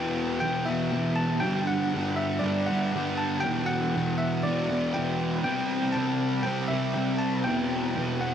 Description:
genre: rock.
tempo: 119 BPM.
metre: 4/4.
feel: straight.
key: unclear.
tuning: A4 = 440 Hz.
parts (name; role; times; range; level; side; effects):
bell-like tine electric piano; melody; 0.0-8.3 s; D5 to A5; -31 LUFS; equal; analog delay.
fuzz guitar; riff; 0.0-8.3 s; E2 to C4; -26 LUFS; equal; distortion, lush chorus.
room: wet huge ambient reverb, RT60 5.0 s.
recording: dreamy mix soaked in reverb.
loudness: -24 LUFS.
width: side -8 dB against mid.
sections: 0.0-8.3 A section.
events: none.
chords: 0.0 Em; 1.4 G5; 3.4 Em7; 5.4 C; 7.5 Em.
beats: 0.41 0.91 | 1.42 1.92 2.42 2.93 | 3.43 3.94 4.44 4.94 | 5.44 5.95 6.45 6.95 | 7.45 7.95.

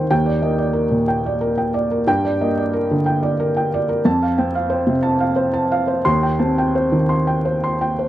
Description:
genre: neoclassical minimalist piano.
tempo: 60 BPM (dotted quarters).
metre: 6/8.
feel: rubato.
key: G minor.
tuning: A4 = 440 Hz.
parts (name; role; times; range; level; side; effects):
felt-muted upright piano; solo; 0.0-8.1 s; Eb2 to C6; -16 LUFS; equal; none.
room: moderate booth ambience, RT60 0.2 s.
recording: dry, close 1970s-style studio recording, vinyl crackle.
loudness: -16 LUFS.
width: side -13 dB against mid.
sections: 0.0-8.1 A section.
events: none.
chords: 0.1 Ebmaj7; 2.1 Gm; 4.1 F; 6.0 Cm/Eb.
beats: | 0.11 1.08 | 2.08 3.06 | 4.05 5.03 | 6.04 7.09.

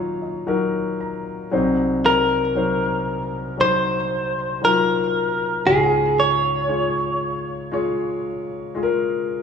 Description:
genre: pop.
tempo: 58 BPM.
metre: 4/4.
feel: straight.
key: unclear.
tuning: A4 = 444 Hz.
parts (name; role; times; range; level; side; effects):
direct-recorded clean electric guitar; melody; 0.0-9.3 s; Ab4 to Db5; -19 LUFS; equal; spring reverb, tape echo.
warm concert grand piano; accompaniment; 0.0-9.4 s; C2 to Bb5; -22 LUFS; left 2 dB; none.
room: light reverb, studio reverb.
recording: rough home demo mix.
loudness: -19 LUFS.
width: side -6 dB against mid.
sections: 0.0-9.4 A section.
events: grand piano fill 0.0-1.5.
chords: 0.0 Ebm; 1.5 Cdim; 5.7 Db.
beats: 0.49 | 1.52 2.56 3.59 4.63 | 5.66 6.70 7.73 8.77.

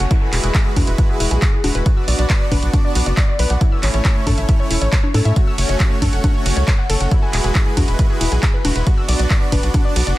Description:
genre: uplifting trance.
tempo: 137 BPM.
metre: 4/4.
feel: straight.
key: unclear.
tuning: A4 = 440 Hz.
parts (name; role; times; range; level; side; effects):
supersaw pad; sustained chords; 0.0-10.0 s; G#3 to D5; -24 LUFS; right 1 dB; sidechain pumping.
wide unison pluck; arpeggios; 0.0-10.1 s; E4 to E6; -26 LUFS; left 3 dB; cassette tape, sidechain pumping, digital delay.
tight sequencer bass; bass; 0.0-10.1 s; E1 to A2; -18 LUFS; equal; sidechain pumping.
punchy analog drum machine; drums; 0.0-10.2 s; congas, handclaps, hi-hat, ride cymbal; -23 LUFS; equal; none.
downlifter; sound effects; 0.0-1.9 s; none; -38 LUFS; right 1 dB; none.
electronic kick drum; drums; 0.1-9.8 s; none; -16 LUFS; equal; none.
room: digital ambience.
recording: dense, heavily limited modern master.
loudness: -14 LUFS.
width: side -16 dB against mid.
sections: 0.0-10.2 A section.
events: none.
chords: 0.1 Eadd9; 1.9 Bm; 3.6 A; 5.4 F#m; 7.1 Eadd9; 8.9 Bm.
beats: | 0.11 0.55 0.98 1.42 | 1.86 2.30 2.73 3.17 | 3.61 4.05 4.49 4.92 | 5.36 5.80 6.24 6.68 | 7.12 7.55 7.99 8.43 | 8.87 9.30 9.74.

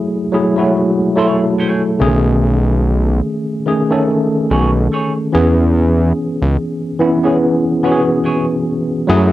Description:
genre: R&B, neo-soul.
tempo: 72 BPM.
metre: 4/4.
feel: swing 57% on 16ths.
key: unclear.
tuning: A4 = 440 Hz.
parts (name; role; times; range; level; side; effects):
tine electric piano; accompaniment; 0.0-9.3 s; C#3 to A4; -14 LUFS; equal; overdrive, fast stereo tremolo, cassette tape.
semi-hollow electric guitar; second line; 0.6-8.4 s; A3 to C#5; -22 LUFS; right 3 dB; wah, cassette tape.
fat analog bass; bass; 2.0-9.3 s; B1 to F#2; -13 LUFS; equal; none.
lush unison pad; sustained chords; 9.1-9.3 s; F#4 to E6; -30 LUFS; right 2 dB; none.
room: moderate studio reverb, RT60 0.5 s.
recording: home recording on cassette.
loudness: -12 LUFS.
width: side -15 dB against mid.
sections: 0.0-9.3 A section.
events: none.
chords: 0.0 F#m9; 2.0 B13; 5.3 E6.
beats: 0.74 1.57 | 2.41 3.24 4.08 4.91 | 5.74 6.58 7.41 8.24 | 9.07.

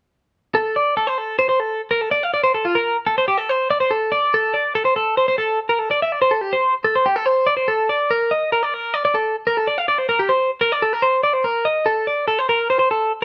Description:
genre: rock.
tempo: 287 BPM (eighths).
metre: 9/8.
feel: straight.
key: D minor.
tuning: A4 = 440 Hz.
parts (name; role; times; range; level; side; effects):
twelve-string electric guitar; solo; 0.5-13.2 s; F4 to F5; -19 LUFS; equal; none.
room: light reverb.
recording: band playing live in one room.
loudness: -19 LUFS.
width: mono.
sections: 0.5-13.2 A section.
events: none.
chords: none.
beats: | 0.54 0.76 0.96 1.18 1.39 1.60 1.81 2.02 2.23 | 2.44 2.65 2.86 3.07 3.28 3.49 3.70 3.91 4.12 | 4.33 4.54 4.75 4.96 5.17 5.38 5.58 5.79 6.00 | 6.21 6.42 6.63 6.84 7.05 7.26 7.47 7.68 7.89 | 8.10 8.30 8.51 8.72 8.93 9.14 9.35 9.56 9.77 | 9.98 10.19 10.39 10.60 10.81 11.02 11.23 11.44 11.65 | 11.86 12.07 12.28 12.48 12.69 12.90 13.11.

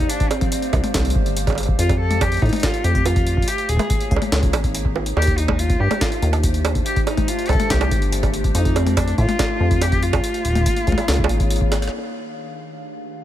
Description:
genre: IDM.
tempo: 142 BPM.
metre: 4/4.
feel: straight.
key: Eb lydian.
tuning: A4 = 440 Hz.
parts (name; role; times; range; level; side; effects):
warm cello; melody; 0.0-11.7 s; C4 to A4; -25 LUFS; left 1 dB; ping-pong delay.
warbly tape-like pad; sustained chords; 0.0-13.2 s; Eb3 to F5; -28 LUFS; left 1 dB; chorus, built-in reverb.
deep acid bass; bass; 0.0-11.9 s; G1 to A2; -20 LUFS; equal; none.
jungle sampler-style drum kit; drums; 0.1-12.0 s; bongos, hi-hat, rim click, snare drum, toms; -24 LUFS; right 2 dB; overdrive, low-pass filter on hats, low-pass filter on snare, low-pass filter on perc, low-pass filter on toms, low-pass filter on room.
electronic kick drum; drums; 0.2-11.7 s; none; -22 LUFS; equal; none.
room: digital ambience.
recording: none.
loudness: -17 LUFS.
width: side -12 dB against mid.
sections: 0.0-11.9 A section; 11.9-13.2 B section.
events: drum fill 11.6-11.9; band accent 11.7.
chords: 0.1 Csus4; 1.8 F; 3.5 Db; 5.2 Ebmaj7; 6.9 Csus4; 8.5 F; 10.2 Db; 11.9 Ebmaj7.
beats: | 0.10 0.52 0.94 1.36 | 1.79 2.21 2.63 3.06 | 3.48 3.90 4.32 4.75 | 5.17 5.59 6.01 6.43 | 6.86 7.28 7.70 8.13 | 8.55 8.97 9.39 9.82 | 10.24 10.66 11.08 11.51 | 11.93 12.35 12.77 13.20.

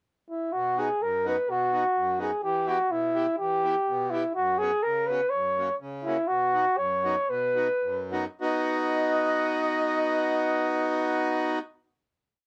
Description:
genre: alpine folk.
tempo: 98-128 BPM.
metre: 2/4.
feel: straight.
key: B major.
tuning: A4 = 441 Hz.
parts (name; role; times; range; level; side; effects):
warm flugelhorn; melody; 0.3-11.6 s; E4 to D#5; -28 LUFS; equal; none.
accordion; accompaniment; 0.5-11.6 s; F#2 to G4; -31 LUFS; equal; none.
room: light reverb.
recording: close, detailed microphones.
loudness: -27 LUFS.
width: mono.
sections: 0.0-0.5 pickup bar; 0.5-8.4 A section; 8.4-10.8 final chord.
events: slowing down 6.3-8.4.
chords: 0.0 N.C.; 0.5 B; 2.4 Em; 4.4 F#sus4; 5.3 F#; 6.3 B.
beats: 0.07 | 0.54 1.02 | 1.49 1.97 | 2.44 2.92 | 3.40 3.88 | 4.36 4.85 | 5.33 5.82 | 6.30 6.79 | 7.29 7.83 | 8.41 9.02 | 9.62 10.23.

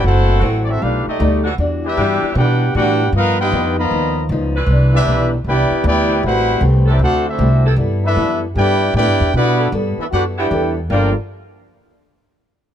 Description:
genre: jazz, big band swing.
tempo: 155 BPM.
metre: 4/4.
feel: swing 65% on 8ths.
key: G major.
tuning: A4 = 438 Hz.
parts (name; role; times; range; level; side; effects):
warm trumpet section; melody; 0.0-11.1 s; A3 to B5; -20 LUFS; equal; none.
dark trombone section; second line; 0.0-11.1 s; G2 to G4; -21 LUFS; equal; none.
picked old ladder-braced acoustic guitar; accompaniment; 0.0-11.1 s; G2 to B4; -23 LUFS; left 2 dB; none.
mellow saxophone section; sustained chords; 0.0-11.1 s; E3 to B4; -26 LUFS; equal; none.
upright bass; bass; 0.0-11.1 s; F#1 to B2; -16 LUFS; equal; none.
room: little or no reverb.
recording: close, detailed microphones.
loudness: -13 LUFS.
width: side -10 dB against mid.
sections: 0.0-10.9 A section; 10.9-12.5 B section.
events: none.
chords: 0.0 F#m7b5; 0.8 B7alt; 1.6 Em9; 3.1 G7alt; 4.7 Cmaj9; 6.2 Am9; 7.0 D7; 7.8 G69; 10.9 Gm7.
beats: | 0.04 0.43 0.81 1.20 | 1.59 1.97 2.36 2.75 | 3.13 3.52 3.91 4.30 | 4.68 5.07 5.46 5.85 | 6.24 6.62 7.01 7.40 | 7.79 8.18 8.57 8.96 | 9.35 9.73 10.12 10.51 | 10.90.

